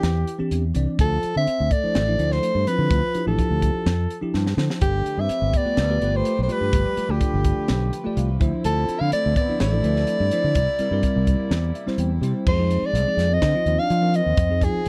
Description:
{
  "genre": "electric jazz fusion",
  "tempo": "126 BPM",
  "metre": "4/4",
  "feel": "straight",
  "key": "D dorian",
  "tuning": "A4 = 441 Hz",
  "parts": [
    { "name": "clear soprano saxophone", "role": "melody", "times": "0.0-14.9 s", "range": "G4 to F5", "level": "-26 LUFS", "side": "equal", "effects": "none" },
    { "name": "breathy trombone", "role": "second line", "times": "0.0-14.9 s", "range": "D3 to D4", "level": "-32 LUFS", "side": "equal", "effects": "none" },
    { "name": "bell-like tine electric piano", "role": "accompaniment", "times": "0.0-14.8 s", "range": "E3 to A5", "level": "-30 LUFS", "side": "equal", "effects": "analog chorus" },
    { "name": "fingered electric bass", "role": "bass", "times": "0.0-14.9 s", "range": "G1 to F3", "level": "-25 LUFS", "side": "equal", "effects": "none" },
    { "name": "crisp fusion drum kit", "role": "drums", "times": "0.0-14.9 s", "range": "crash cymbal, hi-hat, kick drum, snare drum", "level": "-27 LUFS", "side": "equal", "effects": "none" },
    { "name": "rich chamber string section", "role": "sustained chords", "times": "4.8-12.4 s", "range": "C3 to B4", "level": "-38 LUFS", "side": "equal", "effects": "none" }
  ],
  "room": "little or no reverb",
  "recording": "dry, close 1970s-style studio recording",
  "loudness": "-22 LUFS",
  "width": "mono",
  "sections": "0.0-12.5 A section; 12.5-14.9 B section",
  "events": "tine electric piano fill 4.1-4.8, 7.7-8.6, 11.5-12.5; drum fill 4.3-4.8",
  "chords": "0.0 Cadd9; 1.0 Dm9; 4.8 G9; 8.4 Dm9; 10.6 C7; 12.5 Fm7"
}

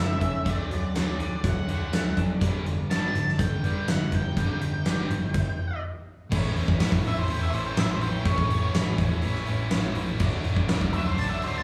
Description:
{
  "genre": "quiet-loud alternative rock",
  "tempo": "123 BPM",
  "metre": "4/4",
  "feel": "straight",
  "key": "A mixolydian",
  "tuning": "A4 = 441 Hz",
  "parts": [
    { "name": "octave-fuzz lead guitar", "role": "melody", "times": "0.0-11.6 s", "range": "C5 to A5", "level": "-35 LUFS", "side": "equal", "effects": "distortion" },
    { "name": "electric guitar through a small old amp", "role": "arpeggios", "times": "0.0-2.4 s", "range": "C#3 to D4", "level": "-38 LUFS", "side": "equal", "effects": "analog delay" },
    { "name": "scooped high-gain guitar", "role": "riff", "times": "0.0-11.6 s", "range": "F#2 to E4", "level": "-36 LUFS", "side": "equal", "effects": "distortion" },
    { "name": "overdriven picked electric bass", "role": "bass", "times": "0.0-11.6 s", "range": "E1 to A2", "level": "-34 LUFS", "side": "equal", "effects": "none" },
    { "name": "huge arena drum kit", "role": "drums", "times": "0.2-11.5 s", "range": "crash cymbal, hi-hat, kick drum, snare drum", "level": "-29 LUFS", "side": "equal", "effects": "none" },
    { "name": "thick fuzz guitar", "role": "riff", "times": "2.4-11.6 s", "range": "G2 to E4", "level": "-32 LUFS", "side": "equal", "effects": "distortion" }
  ],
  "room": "moderate large studio reverb, RT60 1.4 s",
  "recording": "band playing live in one room, small room reverb",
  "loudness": "-26 LUFS",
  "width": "mono",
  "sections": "0.0-6.3 A section; 6.3-11.6 B section",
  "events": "stop 5.3-6.3; lead electric guitar solo 6.3-11.6",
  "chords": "0.5 D; 2.4 G5; 6.3 A; 10.2 D"
}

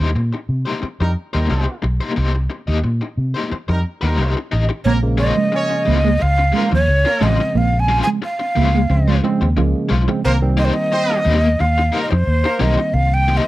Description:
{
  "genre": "funk",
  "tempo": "89 BPM",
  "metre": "4/4",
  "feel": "straight",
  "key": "Bb dorian",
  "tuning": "A4 = 440 Hz",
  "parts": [
    { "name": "biting overdriven guitar", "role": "accompaniment", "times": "0.0-13.4 s", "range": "Ab3 to Eb5", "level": "-23 LUFS", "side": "left 4 dB", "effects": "tube saturation, tremolo" },
    { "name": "vintage muted fingered electric bass", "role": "bass", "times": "0.0-13.4 s", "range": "A1 to C3", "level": "-17 LUFS", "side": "equal", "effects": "none" },
    { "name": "mellow horn section", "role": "second line", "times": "1.0-12.7 s", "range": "G3 to Db5", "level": "-25 LUFS", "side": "right 1 dB", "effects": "none" },
    { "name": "breathy jazz flute", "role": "melody", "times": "4.8-13.5 s", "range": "C5 to Ab5", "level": "-19 LUFS", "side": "equal", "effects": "none" },
    { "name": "mellow electric guitar", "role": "riff", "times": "4.9-10.2 s", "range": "F3 to Bb3", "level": "-21 LUFS", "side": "right 7 dB", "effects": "none" },
    { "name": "tine electric piano", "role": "stabs", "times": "4.9-13.5 s", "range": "Db3 to C4", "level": "-22 LUFS", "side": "right 2 dB", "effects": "overdrive" }
  ],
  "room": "small room ambience",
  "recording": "dry, close 1970s-style studio recording",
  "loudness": "-15 LUFS",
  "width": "side -16 dB against mid",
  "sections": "0.0-4.9 A section; 4.9-13.5 B section",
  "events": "none",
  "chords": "0.0 Cm7; 4.9 Bbm9; 10.2 Cm7"
}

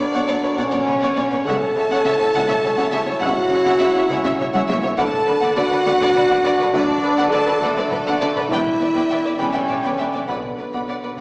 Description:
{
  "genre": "cinematic, epic orchestral film score",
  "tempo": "68 BPM (dotted quarters)",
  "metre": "6/8",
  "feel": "straight",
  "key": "B minor",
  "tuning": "A4 = 438 Hz",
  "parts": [
    { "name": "rich studio violin section", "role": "melody", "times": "0.0-11.2 s", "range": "A4 to A5", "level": "-30 LUFS", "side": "equal", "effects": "none" },
    { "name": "rich symphonic violin section", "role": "second line", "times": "0.0-11.2 s", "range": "B4 to B5", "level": "-28 LUFS", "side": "equal", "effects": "none" },
    { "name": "rich symphonic viola section", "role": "accompaniment", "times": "0.0-11.1 s", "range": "B4 to E5", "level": "-30 LUFS", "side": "equal", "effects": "none" },
    { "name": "dark French horn section", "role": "sustained chords", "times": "0.0-11.2 s", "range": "A3 to A4", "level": "-22 LUFS", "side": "equal", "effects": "none" },
    { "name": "warm trombone section", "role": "sustained chords", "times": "0.0-11.2 s", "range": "D3 to E4", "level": "-29 LUFS", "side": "equal", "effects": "none" },
    { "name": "clear studio double bass section", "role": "bass", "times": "0.0-11.2 s", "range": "E1 to D2", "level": "-36 LUFS", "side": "equal", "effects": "none" },
    { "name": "warm symphonic cello section", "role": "bass", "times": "0.0-11.2 s", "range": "E2 to D3", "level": "-30 LUFS", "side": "equal", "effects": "none" },
    { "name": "taiko ensemble", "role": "drums", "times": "0.2-11.2 s", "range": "none", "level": "-34 LUFS", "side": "equal", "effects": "none" },
    { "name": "timpani", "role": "percussion", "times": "10.3-11.2 s", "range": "none", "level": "barely audible", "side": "none", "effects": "none" }
  ],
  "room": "wet scoring stage reverb, RT60 1.7 s",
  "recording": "heard from further back in the room, small speaker sound",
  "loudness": "-19 LUFS",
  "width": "mono",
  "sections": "0.0-11.2 A section",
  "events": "drum fill 4.5-5.0; timpani fill 10.3-11.2",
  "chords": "0.0 Bmadd9; 1.5 F#m7/C#; 5.0 D6; 8.5 Em7; 10.3 Bm"
}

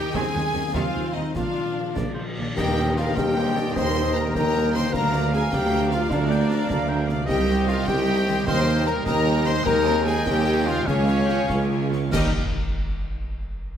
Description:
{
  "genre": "cinematic, heroic adventure film score",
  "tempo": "101 BPM (dotted quarters)",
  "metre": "12/8",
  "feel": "straight",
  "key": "Eb major",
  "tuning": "A4 = 440 Hz",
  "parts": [
    { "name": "bright symphonic violin section", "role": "melody", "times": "0.0-12.4 s", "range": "Db5 to C6", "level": "-32 LUFS", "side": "left 3 dB", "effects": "none" },
    { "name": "dark symphonic violin section", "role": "second line", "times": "0.0-12.4 s", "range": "Bb4 to D6", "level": "-39 LUFS", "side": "left 2 dB", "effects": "none" },
    { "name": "large flute ensemble", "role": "second line", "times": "0.0-12.4 s", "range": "Eb5 to Bb5", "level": "-36 LUFS", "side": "equal", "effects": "none" },
    { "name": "mellow clarinet", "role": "second line", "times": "0.0-12.3 s", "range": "Eb4 to F5", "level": "-35 LUFS", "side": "left 3 dB", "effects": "none" },
    { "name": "rich symphonic viola section", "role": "accompaniment", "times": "0.0-12.4 s", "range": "G3 to D5", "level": "-34 LUFS", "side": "right 2 dB", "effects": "none" },
    { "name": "warm French horn section", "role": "sustained chords", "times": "0.0-12.3 s", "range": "Db4 to C5", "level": "-28 LUFS", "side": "left 5 dB", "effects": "none" },
    { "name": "concert harp", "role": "arpeggios", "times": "0.0-12.4 s", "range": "Bb2 to Eb5", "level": "-34 LUFS", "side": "left 6 dB", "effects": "none" },
    { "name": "mellow trumpet", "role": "stabs", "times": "0.0-12.3 s", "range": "G3 to C5", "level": "-31 LUFS", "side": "right 1 dB", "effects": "none" },
    { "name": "clear symphonic cello section", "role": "bass", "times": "0.0-12.4 s", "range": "C2 to Eb3", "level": "-28 LUFS", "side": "right 2 dB", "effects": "none" },
    { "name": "mellow tuba", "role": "bass", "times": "0.0-12.3 s", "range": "Bb1 to Eb2", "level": "-28 LUFS", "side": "right 4 dB", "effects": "none" },
    { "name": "rich symphonic double bass section", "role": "bass", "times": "0.0-12.4 s", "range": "Bb1 to Eb2", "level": "-29 LUFS", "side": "right 3 dB", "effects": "none" },
    { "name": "concert snare drum, concert bass drum and clash cymbals", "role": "drums", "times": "0.1-12.4 s", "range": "none", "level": "-32 LUFS", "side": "equal", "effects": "none" },
    { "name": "cymbal swell, tam-tam, clash cymbals and concert bass drum", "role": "percussion", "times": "0.1-4.1, 12.1-12.9 s", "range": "none", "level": "-33 LUFS", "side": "equal", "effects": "none" },
    { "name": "clear oboe", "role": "second line", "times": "1.9-12.3 s", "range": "Bb4 to Ab5", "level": "-33 LUFS", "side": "right 1 dB", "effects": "none" }
  ],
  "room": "moderate scoring stage reverb, RT60 2.1 s",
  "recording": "none",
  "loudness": "-20 LUFS",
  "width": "side -9 dB against mid",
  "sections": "0.0-2.6 A section; 2.6-12.1 B section; 12.1-13.8 C section",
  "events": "band accent 2.6-3.0, 12.1-12.6; slowing down 8.1-12.1",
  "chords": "0.1 Ab/Eb; 1.4 Bb; 2.6 Eb; 4.9 Bb/D; 7.3 Cm; 8.5 Eb; 9.7 Ab/Eb; 10.9 Db; 12.1 Eb"
}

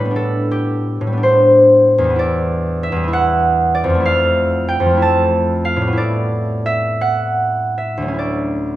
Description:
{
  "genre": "classical, solo harp piece",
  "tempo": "49-66 BPM (dotted quarters)",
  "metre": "6/8",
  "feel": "rubato",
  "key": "unclear",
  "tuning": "A4 = 440 Hz",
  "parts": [
    { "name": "concert harp", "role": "solo", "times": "0.0-8.8 s", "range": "D2 to A5", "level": "-13 LUFS", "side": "equal", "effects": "none" }
  ],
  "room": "wet recital hall reverb, RT60 1.7 s",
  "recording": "none",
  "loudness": "-13 LUFS",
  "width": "side -14 dB against mid",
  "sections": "0.0-8.8 A section",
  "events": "none",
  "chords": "0.2 Am11; 2.2 Em9; 4.1 Fmaj7; 6.0 A9sus4; 8.2 Dmaj9"
}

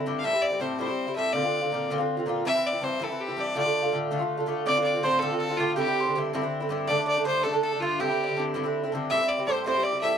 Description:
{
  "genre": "celtic folk",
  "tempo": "108 BPM (dotted quarters)",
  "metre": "6/8",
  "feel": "straight",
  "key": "D minor",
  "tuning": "A4 = 440 Hz",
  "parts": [
    { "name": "Irish bouzouki", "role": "accompaniment", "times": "0.0-10.2 s", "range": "G2 to F4", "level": "-27 LUFS", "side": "equal", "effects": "none" },
    { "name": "bright fiddle", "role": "melody", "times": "0.2-10.2 s", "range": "F4 to F5", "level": "-27 LUFS", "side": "left 1 dB", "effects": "none" },
    { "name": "mandolin", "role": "second line", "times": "4.7-10.2 s", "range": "F4 to E5", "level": "-29 LUFS", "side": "right 6 dB", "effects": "none" }
  ],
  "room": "moderate booth ambience, RT60 0.2 s",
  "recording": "dry, close 1970s-style studio recording",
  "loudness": "-24 LUFS",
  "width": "side -8 dB against mid",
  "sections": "0.0-4.7 A section; 4.7-10.2 A section",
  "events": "none",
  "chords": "0.2 Am7; 1.3 Bbadd9; 2.5 C; 3.6 Dm; 4.7 Dm7; 5.8 Cadd9; 6.9 Gsus2; 8.0 Cadd9; 9.1 Am7"
}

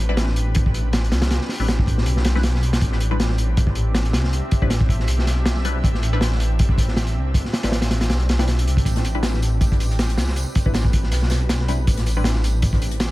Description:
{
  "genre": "drum and bass, jungle",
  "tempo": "159 BPM",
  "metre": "4/4",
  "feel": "swing 55% on 16ths",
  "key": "A minor",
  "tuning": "A4 = 441 Hz",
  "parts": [
    { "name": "granular cloud pad", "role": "sustained chords", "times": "0.0-13.1 s", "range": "C4 to E5", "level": "-31 LUFS", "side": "equal", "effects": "built-in reverb" },
    { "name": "detuned saw bass", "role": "bass", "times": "0.0-13.1 s", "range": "A1 to C2", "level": "-20 LUFS", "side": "equal", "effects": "none" },
    { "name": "filtered dub chord stab", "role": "stabs", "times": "0.1-13.1 s", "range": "G3 to B4", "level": "-31 LUFS", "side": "left 3 dB", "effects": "phaser, dub echo" },
    { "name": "crunchy breakbeat drum kit", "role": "drums", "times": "0.2-13.1 s", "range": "hi-hat, kick drum, snare drum", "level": "-21 LUFS", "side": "equal", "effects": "none" },
    { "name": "natural country drum kit", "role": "drums", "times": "8.9-13.1 s", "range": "hi-hat, snare drum, tambourine", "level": "-35 LUFS", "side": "right 1 dB", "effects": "high-pass filter on hats, high-pass filter on snare, high-pass filter on perc, high-pass filter on room" }
  ],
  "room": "little or no reverb",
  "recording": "vinyl crackle",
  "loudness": "-17 LUFS",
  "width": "side -18 dB against mid",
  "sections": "0.0-13.1 A section",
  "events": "none",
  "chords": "0.0 Am11"
}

